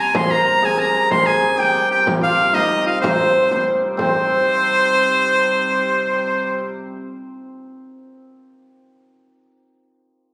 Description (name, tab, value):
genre	medieval dance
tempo	125 BPM (dotted quarters)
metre	6/8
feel	straight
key	C minor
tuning	A4 = 440 Hz
part	edgy shawm	melody	0.0-6.7 s	C5 to C6	-19 LUFS	equal	none
part	warm hurdy-gurdy	drone	0.0-6.7 s	C3 to G3	-32 LUFS	equal	none
part	frame drum	percussion	0.1-4.1 s	none	-27 LUFS	equal	none
part	hammered dulcimer	second line	0.2-8.0 s	C4 to C5	-24 LUFS	equal	none
room	wet scoring stage reverb, RT60 1.6 s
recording	recorded on a phone in the room, studio reverb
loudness	-17 LUFS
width	mono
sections	0.0-4.0 A section; 4.0-5.9 B section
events	none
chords	none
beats	| 0.15 0.63 | 1.11 1.59 | 2.07 2.55 | 3.03 3.52 | 4.00 4.48 | 4.96 5.44